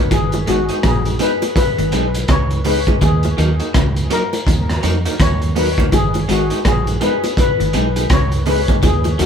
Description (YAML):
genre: roots reggae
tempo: 83 BPM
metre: 4/4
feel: swing 61% on 16ths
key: G# minor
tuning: A4 = 440 Hz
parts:
  - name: steel pan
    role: melody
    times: 0.0-9.3 s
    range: F#4 to C#5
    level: -20 LUFS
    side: left 4 dB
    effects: dub echo
  - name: electric guitar through a small old amp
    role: accompaniment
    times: 0.0-9.3 s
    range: F#3 to G#4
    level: -23 LUFS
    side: right 2 dB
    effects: harmonic tremolo
  - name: mellow tonewheel organ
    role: accompaniment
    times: 0.0-9.3 s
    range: D#2 to D#4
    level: -29 LUFS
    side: left 1 dB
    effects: none
  - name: vintage muted fingered electric bass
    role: bass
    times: 0.0-9.3 s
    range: G#1 to E#2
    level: -19 LUFS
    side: right 1 dB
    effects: none
  - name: electric guitar at the edge of break-up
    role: riff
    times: 0.1-9.3 s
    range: G#2 to E#3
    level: -25 LUFS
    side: left 4 dB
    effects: none
  - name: crunchy breakbeat drum kit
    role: drums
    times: 0.1-9.3 s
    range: hi-hat, kick drum, rim click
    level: -18 LUFS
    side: equal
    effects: none
  - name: bongos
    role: percussion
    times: 0.1-9.2 s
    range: none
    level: -24 LUFS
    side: right 2 dB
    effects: none
room: light reverb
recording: band playing live in one room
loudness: -14 LUFS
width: side -7 dB against mid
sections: 0.0-9.3 A section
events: none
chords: 0.1 G#m; 3.0 D#m; 5.9 G#m